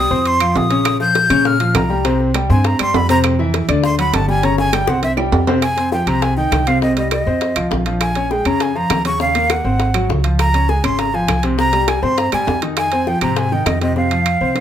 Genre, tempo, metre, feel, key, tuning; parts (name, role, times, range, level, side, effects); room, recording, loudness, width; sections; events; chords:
Afro-Cuban jazz; 201 BPM; 4/4; straight; F minor; A4 = 440 Hz
breathy bright jazz flute; melody; 0.0-14.6 s; Eb5 to G6; -18 LUFS; right 1 dB; plate reverb
clear baby grand piano; accompaniment; 0.0-14.6 s; C3 to C6; -19 LUFS; left 2 dB
upright bass; bass; 0.0-14.6 s; G1 to Bb2; -20 LUFS; equal
timbales; percussion; 0.3-14.6 s; -23 LUFS; right 5 dB
claves; percussion; 0.4-14.4 s; -28 LUFS; right 12 dB
bongos; percussion; 0.9-14.6 s; -26 LUFS; left 6 dB
moderate club reverb, RT60 0.7 s; -14 LUFS; side -10 dB against mid
0.0-5.6 A section; 5.6-14.6 B section
flute solo 0.0-5.6; drum fill 4.4-5.6, 14.0-14.6
0.3 F5; 0.9 Bbm; 2.0 C5; 3.2 F5; 3.8 D; 4.4 Bbm13/G; 5.0 C5; 5.6 Fm9; 6.8 Cm; 7.4 F5; 8.0 Bbm7; 9.2 Ebm9; 9.8 Ab7; 10.4 Dbmaj7; 11.6 C5; 12.8 Fm7